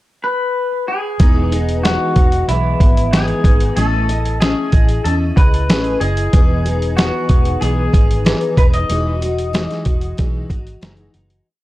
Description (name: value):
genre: indie pop, bedroom pop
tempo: 94 BPM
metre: 4/4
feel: straight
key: E major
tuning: A4 = 442 Hz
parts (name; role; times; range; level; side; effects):
- electric guitar through a small old amp; melody; 0.2-10.8 s; E4 to D#5; -21 LUFS; left 1 dB; wide subtle chorus, analog delay
- picked steel-string acoustic guitar; accompaniment; 1.2-11.5 s; E3 to D#5; -21 LUFS; left 1 dB; ensemble chorus, vibrato effect
- vintage muted fingered electric bass; bass; 1.2-11.4 s; E1 to E2; -19 LUFS; equal; tube saturation
- lo-fi sampler-style drum kit; drums; 1.2-11.4 s; hi-hat, kick drum, snare drum; -14 LUFS; equal; none
room: little or no reverb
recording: dry, gritty hardware recording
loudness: -13 LUFS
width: side -16 dB against mid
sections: 0.0-1.2 pickup bar; 1.2-11.5 A section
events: fade-out 8.9-11.5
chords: 0.0 N.C.; 1.2 Emaj7; 3.8 Amaj9#11; 6.3 Emaj7; 8.9 Emaj9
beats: 0.56 | 1.20 1.84 2.48 3.12 | 3.77 4.41 5.05 5.69 | 6.33 6.97 7.62 8.26 | 8.90 9.54 10.18 10.82